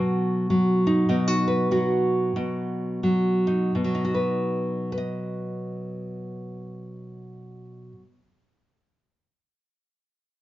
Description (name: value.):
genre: folk.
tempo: 81-105 BPM.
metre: 4/4.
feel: swing 61% on 8ths.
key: B major.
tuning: A4 = 439 Hz.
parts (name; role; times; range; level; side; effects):
nylon-string guitar; solo; 0.0-8.2 s; B2 to D#5; -23 LUFS; equal; none.
room: moderate studio reverb, RT60 0.9 s.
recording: nothing above 7.5 kHz.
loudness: -22 LUFS.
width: side -15 dB against mid.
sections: 0.0-3.8 A section; 3.8-6.7 B section.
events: slowing down 0.0-3.8.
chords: 0.0 B.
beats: 0.51 | 1.11 1.72 2.36 3.04 | 3.75 4.49 5.22 5.96.